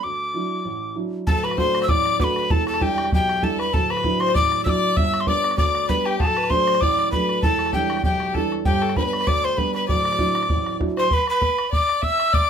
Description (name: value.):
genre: celtic folk, Celtic reel.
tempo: 195 BPM.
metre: 4/4.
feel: swing 54% on 8ths.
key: D mixolydian.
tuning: A4 = 438 Hz.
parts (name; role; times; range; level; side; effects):
breathy mid whistle; melody; 0.0-12.5 s; G5 to E6; -22 LUFS; equal; none.
warm upright piano; accompaniment; 0.0-11.1 s; D1 to F#4; -25 LUFS; right 4 dB; none.
bright fiddle; second line; 1.3-12.5 s; G4 to E5; -25 LUFS; left 5 dB; none.
bodhran; percussion; 1.3-12.4 s; none; -24 LUFS; equal; none.
room: moderate studio ambience, RT60 0.5 s.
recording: band playing live in one room.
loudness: -18 LUFS.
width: side -8 dB against mid.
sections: 0.0-1.3 A section; 1.3-11.1 A section; 11.1-12.5 B section.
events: none.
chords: 0.0 Dadd9; 1.3 D; 2.5 Em7; 3.7 Dadd9; 5.0 G; 6.2 D; 7.4 Em7; 8.7 G; 9.9 Dadd9; 11.1 N.C..